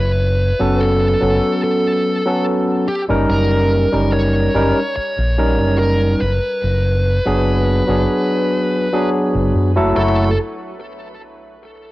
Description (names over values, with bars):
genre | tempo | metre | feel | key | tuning
vaporwave | 72 BPM | 4/4 | straight | F# minor | A4 = 441 Hz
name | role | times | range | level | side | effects
high-gain lead guitar | melody | 0.0-10.4 s | G4 to C#5 | -22 LUFS | equal | distortion, tape echo
fingered electric bass | bass | 0.0-10.4 s | F#1 to F#2 | -17 LUFS | equal | tube saturation
barky tine electric piano | accompaniment | 0.6-10.4 s | F#3 to A#4 | -17 LUFS | equal | wide subtle chorus, tape echo
room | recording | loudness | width
light reverb, digital ambience | dry, gritty hardware recording, transformer saturation, cassette tape, faint mains hum | -14 LUFS | side -17 dB against mid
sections
0.0-10.0 A section; 10.0-11.9 B section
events
none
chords
0.0 A69/F#; 2.9 D#7/F#; 6.2 G#m7b5/F#; 10.0 F#m7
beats
0.80 1.63 2.47 | 3.30 4.13 4.97 5.80 | 6.63 7.47 8.30 9.13 | 9.97